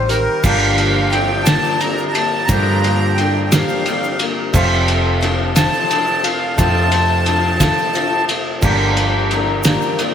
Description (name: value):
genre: folk rock and heartland rock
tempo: 59 BPM (dotted quarters)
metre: 6/8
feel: straight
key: G minor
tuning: A4 = 441 Hz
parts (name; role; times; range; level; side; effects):
- accordion; melody; 0.0-8.2 s; Bb4 to Bb5; -20 LUFS; left 1 dB; light tremolo tuning, analog delay
- dark baby grand piano; accompaniment; 0.0-10.1 s; F4 to A5; -29 LUFS; right 5 dB; slapback echo
- picked twelve-string acoustic guitar; accompaniment; 0.0-10.1 s; G2 to Bb4; -24 LUFS; left 8 dB; slapback echo
- twangy electric guitar; riff; 0.0-10.1 s; F2 to G4; -22 LUFS; equal; lush chorus
- hollow-body short-scale fingered electric bass; bass; 0.0-9.8 s; F1 to G2; -19 LUFS; right 1 dB; none
- cloth-damped thuddy drum kit; drums; 0.1-10.1 s; crash cymbal, hi-hat, kick drum, ride cymbal, snare drum; -18 LUFS; equal; none
- egg shaker; percussion; 0.4-10.1 s; none; -31 LUFS; right 8 dB; none
room: light reverb, small room ambience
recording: none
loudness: -13 LUFS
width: side -8 dB against mid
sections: 0.4-10.1 A section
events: grand piano fill 7.6-8.6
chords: 0.4 Gm7; 4.5 F; 8.6 Gm7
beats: | 0.44 1.47 | 2.49 3.52 | 4.54 5.56 | 6.59 7.61 | 8.63 9.65